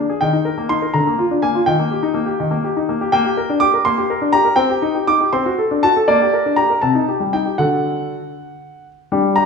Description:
classical-period piano sonatina; 82 BPM (dotted quarters); 6/8; rubato; Eb major; A4 = 440 Hz
clear concert grand piano; solo; 0.0-9.5 s; C3 to D6; -15 LUFS; left 1 dB
moderate recital hall reverb, RT60 1.6 s; studio ambience; -15 LUFS; side -5 dB against mid
0.0-9.1 A section
0.2 Eb; 1.0 Bb/D; 1.7 Eb; 3.1 Gm/Bb; 4.6 Cm; 5.3 D7/C; 6.1 Gm/Bb; 6.8 Am7b5/C; 7.6 D

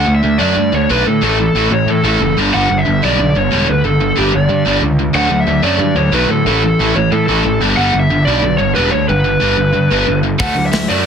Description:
punk rock; 183 BPM; 4/4; straight; A4 = 437 Hz
lead guitar through a small cranked amp; melody; 0.0-11.1 s; G4 to F#5; -16 LUFS; right 1 dB; overdrive
distorted electric guitar; riff; 0.0-11.0 s; G2 to D4; -15 LUFS; equal; distortion
fuzz picked electric bass; bass; 0.0-11.0 s; E1 to A2; -17 LUFS; equal; overdrive
tight metal drum kit; drums; 10.4-10.8 s; hi-hat, kick drum, snare drum; -18 LUFS; left 1 dB; soft clipping on kick
little or no reverb; dense, heavily limited modern master; -11 LUFS; side -7 dB against mid
0.0-11.1 A section
0.0 D5; 1.2 A5; 2.4 G5; 5.1 D; 6.5 A5; 7.6 G; 10.4 D

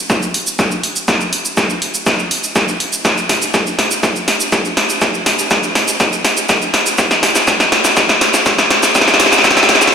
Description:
melodic techno; 122 BPM; 4/4; straight
electronic kick drum; drums; 0.1-9.5 s; -19 LUFS; equal; overdrive, high-pass filter on kick
punchy analog drum machine; drums; 0.1-9.9 s; hi-hat, shaker, snare drum, toms; -11 LUFS; equal; overdrive, high-pass filter on perc, high-pass filter on snare, high-pass filter on hats, high-pass filter on toms
wet lush hall reverb, RT60 2.0 s; played on a big sound system in a bare room, stone room reverb; -11 LUFS; side -7 dB against mid
0.0-9.9 A section
build-up 0.0-9.9; drum fill 0.0-9.9

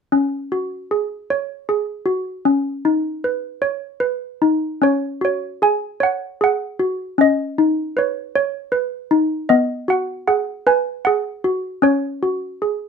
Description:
children's music; 77 BPM; 3/4; straight; A4 = 442 Hz
malleted handbells; melody; 0.1-12.9 s; B3 to G#5; -17 LUFS; equal
light reverb; minimal, uncompressed stereo recording; -18 LUFS; side -6 dB against mid
0.1-4.8 A section; 4.8-12.9 B section
0.1 F#sus2; 2.5 Badd9; 4.8 F#sus2; 7.2 Badd9; 9.5 G#m7/B; 11.8 C#sus4

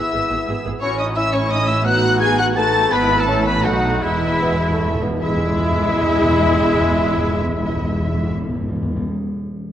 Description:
quick classical-period movement for symphony orchestra; 151-176 BPM; 3/4; rubato; E major; A4 = 439 Hz
warm studio violin section; melody; 0.0-8.3 s; E5 to A6; -25 LUFS; left 2 dB
mellow silver concert flute; second line; 0.0-8.3 s; G#4 to A6; -27 LUFS; left 1 dB
warm clarinet; second line; 0.0-8.3 s; D#4 to G#4; -28 LUFS; left 2 dB
warm oboe; second line; 0.0-8.3 s; E4 to A5; -26 LUFS; equal
warm studio violin section; second line; 0.0-8.3 s; E4 to A5; -26 LUFS; left 2 dB
rich studio viola section; accompaniment; 0.0-8.3 s; G#3 to G#4; -26 LUFS; right 1 dB
warm bassoon; accompaniment; 0.0-8.3 s; G#3 to C#4; -26 LUFS; right 2 dB
warm French horn section; sustained chords; 0.0-8.3 s; E3 to A4; -25 LUFS; left 3 dB
rich chamber double bass section; bass; 0.0-8.3 s; E1 to B1; -26 LUFS; right 2 dB
warm symphonic cello section; bass; 0.0-8.3 s; E2 to B2; -26 LUFS; right 2 dB
timpani; percussion; 4.0-9.0 s; E2; -22 LUFS; equal
wet concert hall reverb, RT60 1.8 s; worn, warbling old tape, cassette tape, warbly pitch drift; -16 LUFS; side -10 dB against mid
0.0-5.2 A section; 5.2-7.6 B section
slowing down 2.4-5.2; timpani fill 4.0-5.2
0.0 E/G#; 0.8 F#m7/A; 1.9 B7/A; 2.9 E/G#; 3.3 A; 3.7 B7; 4.0 E

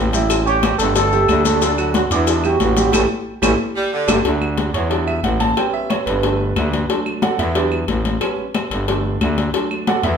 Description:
latin, salsa; 182 BPM; 4/4; straight; D major; A4 = 440 Hz
bright upright piano; accompaniment; 0.0-10.2 s; D3 to D6; -21 LUFS; right 4 dB
growling FM bass; bass; 0.0-10.2 s; G1 to E2; -21 LUFS; equal
mellow trombone section; melody; 0.1-4.2 s; D3 to A4; -20 LUFS; right 2 dB
congas; percussion; 0.1-10.2 s; -23 LUFS; left 4 dB
cowbell; percussion; 0.1-10.2 s; -24 LUFS; left 6 dB
maracas; percussion; 0.1-4.2 s; -28 LUFS; left 7 dB
claves; percussion; 0.3-9.9 s; -28 LUFS; right 4 dB
edgy saxophone section; second line; 3.8-4.2 s; D3 to G3; -21 LUFS; right 2 dB
wet large studio reverb, RT60 0.9 s; band playing live in one room; -15 LUFS; side -7 dB against mid
0.0-4.3 A section; 4.3-10.2 B section
band accent 2.9-4.3; upright piano solo 4.3-10.2
0.3 A7; 1.0 Gsus2; 1.6 D; 2.3 Em7; 2.9 A7; 3.6 Gsus2; 4.3 D; 4.9 Em7; 5.6 Em6/G; 6.2 Gsus2; 6.9 D; 7.6 Em7; 8.2 G; 8.9 Gsus2; 9.5 D

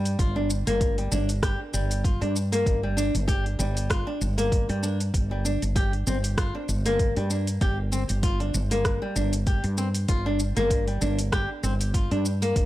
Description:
organic downtempo; 97 BPM; 4/4; swing 55% on 16ths; G minor pentatonic; A4 = 441 Hz
flamenco guitar; arpeggios; 0.0-12.7 s; G3 to G4; -28 LUFS; equal; tape echo
woody fretless electric bass; bass; 0.0-12.7 s; G1 to G2; -26 LUFS; equal; sidechain pumping
deep house drum kit; drums; 0.1-12.7 s; hi-hat, rim click, shaker; -33 LUFS; equal; small room ambience
electronic kick drum; drums; 0.2-12.7 s; -26 LUFS; equal; small room ambience
digital ambience; dry, gritty hardware recording; -23 LUFS; side -15 dB against mid
0.0-12.7 A section
0.0 Gm

